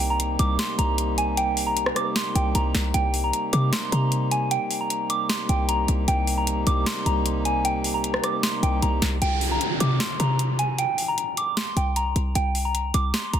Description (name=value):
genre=hip hop, trap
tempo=153 BPM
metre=4/4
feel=half-time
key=C minor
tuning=A4 = 440 Hz
part: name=soft synth bell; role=melody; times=0.0-13.4 s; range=G5 to D6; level=-26 LUFS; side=equal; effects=chorus, tremolo, ping-pong delay
part: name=hand-pumped harmonium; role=sustained chords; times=0.0-9.2 s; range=C3 to Eb4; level=-29 LUFS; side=right 1 dB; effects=none
part: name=short 808-style bass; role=bass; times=0.0-13.4 s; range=C2 to C3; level=-24 LUFS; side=equal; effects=none
part: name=trap drum kit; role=drums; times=0.0-13.4 s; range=hi-hat, rim click, snare drum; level=-26 LUFS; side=equal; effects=none
part: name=downlifter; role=sound effects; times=9.2-12.4 s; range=none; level=-30 LUFS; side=right 1 dB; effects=none
room=light reverb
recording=dense, heavily limited modern master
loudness=-21 LUFS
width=side -9 dB against mid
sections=0.0-9.2 A section; 9.2-13.4 B section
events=none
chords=0.0 Cm7; 9.2 Bbsus2/C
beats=0.20 0.59 0.98 | 1.37 1.77 2.16 2.55 | 2.94 3.33 3.73 4.12 | 4.51 4.90 5.29 5.69 | 6.08 6.47 6.86 7.26 | 7.65 8.04 8.43 8.82 | 9.22 9.61 10.00 10.39 | 10.79 11.18 11.57 11.96 | 12.35 12.75 13.14